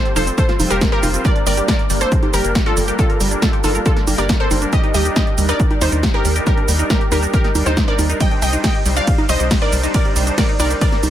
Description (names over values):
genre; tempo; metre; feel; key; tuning
uplifting trance; 138 BPM; 4/4; straight; G minor; A4 = 440 Hz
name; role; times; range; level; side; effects
wide unison pluck; melody; 0.0-11.1 s; Eb4 to G5; -22 LUFS; equal; cassette tape, sidechain pumping, ping-pong delay
wide unison pluck; second line; 0.0-11.1 s; A4 to G5; -27 LUFS; equal; sidechain pumping, dub echo
tight sequenced synth; arpeggios; 0.1-11.1 s; F3 to F5; -26 LUFS; right 1 dB; chorus, sidechain pumping, dub echo
punchy analog drum machine; drums; 0.1-11.1 s; congas, hi-hat, ride cymbal, shaker, snare drum; -22 LUFS; right 1 dB; overdrive, sidechain pumping on hats, sidechain pumping on perc, sidechain pumping on cymbals
filtered supersaw swell; sustained chords; 0.2-11.1 s; G3 to C5; -25 LUFS; equal; sidechain pumping
tight sequencer bass; bass; 0.2-11.1 s; F1 to Eb2; -19 LUFS; equal; sidechain pumping
electronic kick drum; drums; 0.4-10.9 s; none; -18 LUFS; equal; none
room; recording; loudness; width
digital ambience; none; -14 LUFS; side -11 dB against mid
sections
0.0-11.1 A section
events
none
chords
0.0 Fsus2; 1.2 Gm; 4.7 Ebmaj7; 8.2 Cmadd9